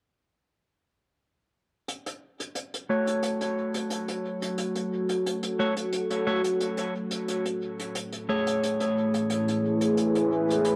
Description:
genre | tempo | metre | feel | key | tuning
ambient dub | 89 BPM | 4/4 | straight | F# minor | A4 = 440 Hz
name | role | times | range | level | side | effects
deep dark ambient pad | sustained chords | 4.0-10.8 s | A3 to C#5 | -30 LUFS | equal | chorus, built-in reverb, cassette tape
hi-hat | drums | 1.9-10.8 s | none | -39 LUFS | equal | dub echo
mellow electric guitar | stabs | 2.9-10.8 s | A3 to C#5 | -32 LUFS | equal | low-pass filter, cassette tape, dub echo
room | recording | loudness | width
moderate spring reverb, RT60 1.9 s, small room ambience | home recording on cassette | -28 LUFS | mono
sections
1.9-10.8 A section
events
filter sweep on ambient pad 1.9-10.8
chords
1.9 F#m; 7.3 Amaj7

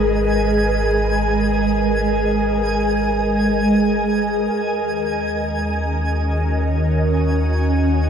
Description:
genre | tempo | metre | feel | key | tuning
ambient | free time | none | none | G# minor | A4 = 440 Hz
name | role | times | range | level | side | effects
ethereal airy pad | sustained chords | 0.0-8.1 s | D#3 to D#5 | -18 LUFS | right 1 dB | ensemble chorus, built-in reverb, phaser
warm sub bass | bass | 0.0-8.1 s | G#1 to D#2 | -22 LUFS | equal | none
twinkling granular texture | texture | 0.0-8.1 s | G#5 | -25 LUFS | right 2 dB | built-in reverb
room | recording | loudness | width
wet cathedral reverb, RT60 5.3 s | in a vast, echoing space | -16 LUFS | side -7 dB against mid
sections
0.0-8.1 A section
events
none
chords
0.0 G#madd9; 4.5 D#m7

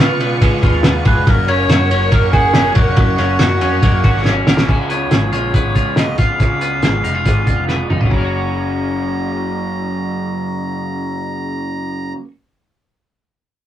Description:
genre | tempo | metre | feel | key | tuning
jangly indie pop | 140 BPM | 4/4 | straight | F# major | A4 = 441 Hz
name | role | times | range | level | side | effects
raw garage guitar | accompaniment | 0.0-12.3 s | F#2 to F#4 | -25 LUFS | right 3 dB | overdrive
ensemble organ-string | sustained chords | 0.0-4.7 s | A#4 to C#6 | -24 LUFS | right 2 dB | ensemble chorus
twelve-string electric guitar | arpeggios | 0.0-12.3 s | F#2 to F#4 | -21 LUFS | left 1 dB | none
vintage muted picked electric bass | bass | 0.0-12.1 s | E#1 to C#3 | -21 LUFS | equal | none
cloth-damped thuddy drum kit | drums | 0.2-8.2 s | crash cymbal, hi-hat, kick drum, ride cymbal, snare drum, toms | -14 LUFS | equal | none
melodica | melody | 1.1-12.1 s | F#4 to A#5 | -21 LUFS | equal | none
room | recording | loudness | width
moderate booth ambience, RT60 0.2 s | rough rehearsal-room recording | -13 LUFS | side -11 dB against mid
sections
0.0-4.7 A section; 4.7-8.1 B section; 8.1-11.6 C section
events
drum fill 4.3-4.7, 7.7-8.1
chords
0.0 C#7; 1.3 F#; 4.7 C#7; 8.1 F#

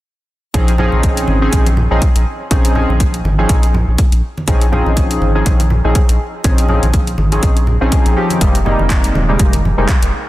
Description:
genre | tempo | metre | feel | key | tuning
deep house | 122 BPM | 4/4 | swing 57% on 16ths | Bb dorian | A4 = 442 Hz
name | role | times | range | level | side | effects
chorused polysynth | stabs | 0.5-9.9 s | C3 to Ab4 | -17 LUFS | equal | vintage 12-bit sampler grit, sidechain pumping, tape echo
round analog bass | bass | 0.5-10.1 s | Eb1 to Bb1 | -16 LUFS | equal | sidechain pumping
deep house drum kit | drums | 0.5-10.1 s | handclaps, hi-hat | -23 LUFS | left 1 dB | overdrive, studio ambience
electronic kick drum | drums | 0.5-10.0 s | none | -14 LUFS | equal | studio ambience
congas | percussion | 0.8-9.8 s | none | -22 LUFS | right 1 dB | sidechain pumping on perc
room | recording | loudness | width
light reverb | dense, heavily limited modern master | -11 LUFS | side -16 dB against mid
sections
0.5-10.3 A section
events
none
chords
0.5 Bbm11; 8.4 Fm11

